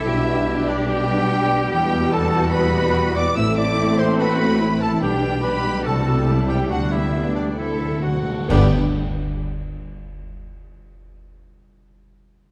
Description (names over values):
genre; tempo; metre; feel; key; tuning
classical, dramatic, fast romantic movement for symphony orchestra; 125-146 BPM; 4/4; rubato; G major; A4 = 441 Hz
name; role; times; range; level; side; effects
warm symphonic violin section; melody; 0.0-8.7 s; D5 to E6; -32 LUFS; equal; none
dark clarinet; second line; 0.0-8.7 s; D4 to E5; -30 LUFS; equal; none
warm cor anglais; second line; 0.0-8.7 s; D4 to E5; -31 LUFS; equal; none
warm symphonic violin section; second line; 0.0-8.8 s; B4 to E6; -32 LUFS; equal; none
dark French horn section; sustained chords; 0.0-8.7 s; A3 to E4; -32 LUFS; equal; none
warm trombone section; sustained chords; 0.0-8.7 s; A2 to A3; -30 LUFS; equal; none
concert harp; arpeggios; 0.0-10.3 s; G2 to D6; -30 LUFS; equal; none
rich symphonic cello section; bass; 0.0-8.7 s; G2 to A4; -30 LUFS; equal; none
warm symphonic viola section; accompaniment; 0.1-8.8 s; G3 to D4; -28 LUFS; equal; none
warm symphonic double bass section; bass; 0.1-8.7 s; G1 to E2; -28 LUFS; equal; none
cymbal swell, clash cymbals and concert bass drum; percussion; 5.0-9.4 s; none; -32 LUFS; equal; none
timpani; percussion; 7.6-8.7 s; G2 to D3; -29 LUFS; equal; none
room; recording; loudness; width
wet concert hall reverb, RT60 2.1 s; dark, warm production; -20 LUFS; mono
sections
0.0-8.5 A section; 8.5-10.3 B section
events
slowing down 4.2-8.5; timpani fill 7.6-8.5; band accent 8.5-8.9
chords
0.1 G/B; 1.7 Em; 3.4 Am; 5.0 G/B; 5.9 Am7/C; 6.7 G/D; 7.6 D7; 8.5 G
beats
| 0.05 0.47 0.89 1.31 | 1.72 2.13 2.54 2.96 | 3.37 3.78 4.19 4.61 | 5.02 5.44 5.86 6.28 | 6.71 7.14 7.58 8.03 | 8.50 8.95 9.40 9.85